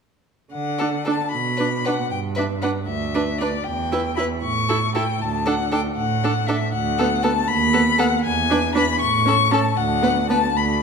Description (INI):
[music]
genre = quick classical-period movement for string quartet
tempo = 78 BPM (dotted quarters)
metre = 6/8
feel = rubato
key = D major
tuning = A4 = 440 Hz
[part]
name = rich violin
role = melody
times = 0.5-10.8 s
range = D5 to C#6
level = -22 LUFS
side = left 7 dB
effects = none
[part]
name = rich cello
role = bass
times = 0.5-10.8 s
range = D2 to D3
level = -24 LUFS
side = right 5 dB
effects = none
[part]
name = clear violin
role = second line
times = 0.8-10.4 s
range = A4 to B4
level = -28 LUFS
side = left 2 dB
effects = none
[part]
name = clear viola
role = accompaniment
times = 0.8-10.4 s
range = B3 to E4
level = -25 LUFS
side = right 4 dB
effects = none
[sound]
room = moderate scoring stage reverb, RT60 1.7 s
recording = none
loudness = -18 LUFS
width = side -5 dB against mid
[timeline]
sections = 0.5-10.8 A section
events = none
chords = 0.5 D; 1.3 Bm; 2.1 G; 3.7 Em; 4.4 A; 5.2 D; 6.7 Bm7/D; 7.5 B7/D#; 8.3 E7; 9.0 A; 9.8 Bm/D